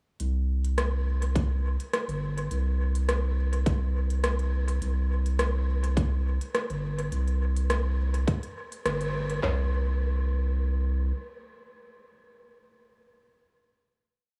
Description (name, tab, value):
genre	ambient dub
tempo	104 BPM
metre	4/4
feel	swing 53% on 16ths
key	unclear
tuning	A4 = 440 Hz
part	round analog bass	bass	0.2-11.1 s	G1 to C2	-28 LUFS	equal	tube saturation
part	organic electronic drum kit	drums	0.2-9.4 s	hi-hat, rim click	-36 LUFS	equal	dub echo
part	organic electronic drum kit	drums	1.4-9.6 s	handclaps, kick drum, snare drum, toms	-29 LUFS	equal	none
room	light reverb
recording	studio reverb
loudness	-28 LUFS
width	mono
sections	0.2-9.4 groove; 9.4-11.7 final note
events	band accent 8.9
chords	none